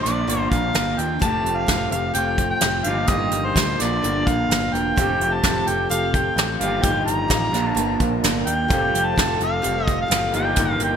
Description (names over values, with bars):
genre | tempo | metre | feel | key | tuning
folk rock and heartland rock | 128 BPM | 4/4 | straight | F mixolydian | A4 = 444 Hz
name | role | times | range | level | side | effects
mellow harmonica | melody | 0.0-11.0 s | C5 to Bb5 | -23 LUFS | equal | none
picked steel-string acoustic guitar | accompaniment | 0.0-11.0 s | G2 to Bb4 | -29 LUFS | left 5 dB | wide subtle chorus
electric guitar through a small old amp | riff | 0.0-11.0 s | G2 to G4 | -26 LUFS | right 1 dB | ensemble chorus
picked electric bass | bass | 0.1-11.0 s | E1 to Eb2 | -27 LUFS | equal | none
soft brush drum kit | drums | 0.1-10.9 s | hi-hat, kick drum, snare drum | -23 LUFS | right 1 dB | none
reed electric piano | accompaniment | 5.0-10.9 s | G4 to F5 | -32 LUFS | right 4 dB | lush chorus
room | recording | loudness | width
moderate lush hall reverb, RT60 1.8 s, studio ambience | bright 1980s-style digital production | -18 LUFS | side -7 dB against mid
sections
0.0-11.0 A section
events
none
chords
0.0 Bb; 1.2 Fadd9; 2.9 Ebadd9/G; 3.8 Bb; 5.0 Fadd9; 6.6 Ebadd9/G; 7.5 Bb; 8.7 Fadd9; 10.4 Ebadd9/G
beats
0.28 0.75 | 1.22 1.69 2.16 2.63 | 3.10 3.57 4.04 4.50 | 4.97 5.44 5.91 6.38 | 6.84 7.31 7.78 8.25 | 8.72 9.18 9.65 10.12 | 10.59